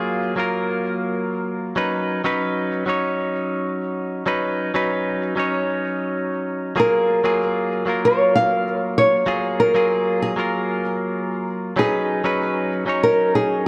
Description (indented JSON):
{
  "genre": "chillout",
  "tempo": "96 BPM",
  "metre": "4/4",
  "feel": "swing 54% on 16ths",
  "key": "F# major",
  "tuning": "A4 = 440 Hz",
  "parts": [
    { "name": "direct-recorded clean electric guitar", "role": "accompaniment", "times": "0.0-13.7 s", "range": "F#3 to C#5", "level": "-24 LUFS", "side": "equal", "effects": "vintage 12-bit sampler grit, delay" },
    { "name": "nylon-string guitar", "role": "melody", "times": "6.8-13.6 s", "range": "G#4 to E#5", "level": "-21 LUFS", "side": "equal", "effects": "digital delay" }
  ],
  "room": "moderate lush hall reverb, RT60 2.8 s",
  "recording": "dark, warm production",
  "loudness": "-21 LUFS",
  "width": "mono",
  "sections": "0.0-13.7 A section",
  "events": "none",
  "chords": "0.0 F#maj9; 1.8 C#9sus4; 6.8 F#maj9; 11.8 C#9sus4",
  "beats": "0.52 1.15 | 1.77 2.40 3.02 3.65 | 4.27 4.90 5.52 6.15 | 6.77 7.40 8.02 8.65 | 9.27 9.90 10.52 11.15 | 11.77 12.40 13.02 13.65"
}